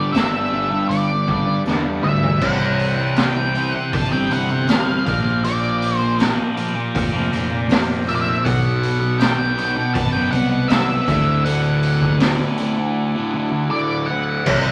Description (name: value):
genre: psychedelic rock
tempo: 80 BPM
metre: 4/4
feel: straight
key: D mixolydian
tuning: A4 = 440 Hz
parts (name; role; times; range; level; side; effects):
- octave-fuzz lead guitar; melody; 0.0-14.7 s; D5 to A5; -25 LUFS; equal; distortion
- combo organ; sustained chords; 0.0-14.7 s; E3 to E5; -31 LUFS; equal; none
- fuzz guitar; riff; 0.0-14.7 s; D2 to C4; -24 LUFS; equal; distortion, phaser
- fuzz picked electric bass; bass; 0.0-14.7 s; F1 to E2; -25 LUFS; equal; overdrive
- raw garage drum kit; drums; 0.1-14.6 s; crash cymbal, hi-hat, kick drum, snare drum, toms; -24 LUFS; equal; none
- tambourine; percussion; 0.1-14.6 s; none; -52 LUFS; equal; none
room: wet studio reverb, RT60 0.5 s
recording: vinyl crackle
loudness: -19 LUFS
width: mono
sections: 0.0-2.4 A section; 2.4-14.5 B section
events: drum fill 1.7-2.4; break 13.0-14.5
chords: 0.0 Gadd9; 2.4 C; 5.1 Bb6; 8.4 Bm7; 11.1 Dadd9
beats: 0.16 0.91 1.67 | 2.42 3.18 3.93 4.69 | 5.44 6.19 6.95 7.70 | 8.45 9.20 9.95 10.71 | 11.46 12.21 12.96 13.71 | 14.46